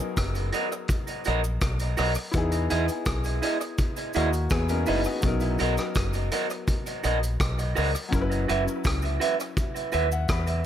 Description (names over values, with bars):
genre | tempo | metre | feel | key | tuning
lovers rock reggae | 83 BPM | 4/4 | straight | B major | A4 = 440 Hz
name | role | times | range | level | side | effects
clear concert grand piano | accompaniment | 0.0-10.7 s | F#3 to B5 | -32 LUFS | left 3 dB | tape echo
deep dub fingered electric bass | bass | 0.2-10.6 s | F#1 to E2 | -27 LUFS | equal | none
vintage drum kit | drums | 0.2-10.6 s | hi-hat, kick drum, rim click | -29 LUFS | equal | gated reverb, tape echo
cabasa | percussion | 0.2-10.6 s | none | -43 LUFS | right 5 dB | none
electric guitar through a small old amp | stabs | 0.5-10.1 s | E4 to E5 | -29 LUFS | right 3 dB | tape echo
room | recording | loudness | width
light reverb, studio reverb | none | -24 LUFS | side -10 dB against mid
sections
0.0-10.7 A section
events
grand piano fill 9.6-10.7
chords
0.0 Bmaj7; 2.3 Emaj7; 5.2 Bmaj7; 8.1 F#7sus4